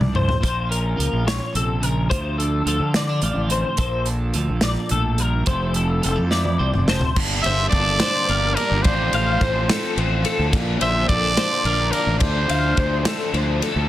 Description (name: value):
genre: math rock and midwest emo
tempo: 71 BPM (dotted quarters)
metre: 6/8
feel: straight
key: unclear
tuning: A4 = 440 Hz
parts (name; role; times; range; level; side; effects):
- twelve-string electric guitar; accompaniment; 0.0-7.2 s; F2 to C5; -26 LUFS; right 4 dB; lush chorus
- twelve-string electric guitar; arpeggios; 0.0-13.9 s; A4 to F5; -25 LUFS; left 4 dB; ensemble chorus
- fuzz fingered electric bass; bass; 0.0-13.9 s; F1 to D3; -23 LUFS; equal; overdrive
- loose indie drum kit; drums; 0.0-13.8 s; crash cymbal, hi-hat, kick drum, ride cymbal, snare drum, toms; -24 LUFS; equal; soft clipping on snare
- biting overdriven guitar; riff; 7.2-13.9 s; G2 to F4; -26 LUFS; equal; none
- growling trumpet; melody; 7.4-13.3 s; Bb4 to E5; -22 LUFS; right 2 dB; none
room: light reverb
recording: dense, heavily limited modern master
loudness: -18 LUFS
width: side -14 dB against mid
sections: 0.0-7.2 A section; 7.2-13.9 B section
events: drum fill 0.0-0.4, 6.3-7.2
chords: 0.4 Bbmadd9; 2.1 Dm7; 3.8 Bbmaj7; 5.5 Fmaj7; 7.2 Gmadd9; 8.8 F6/A; 10.5 Bbmaj7; 12.2 Dm7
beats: | 0.43 1.27 | 2.11 2.95 | 3.80 4.64 | 5.48 6.32 | 7.16 8.00 | 8.85 9.69 | 10.53 11.37 | 12.21 13.05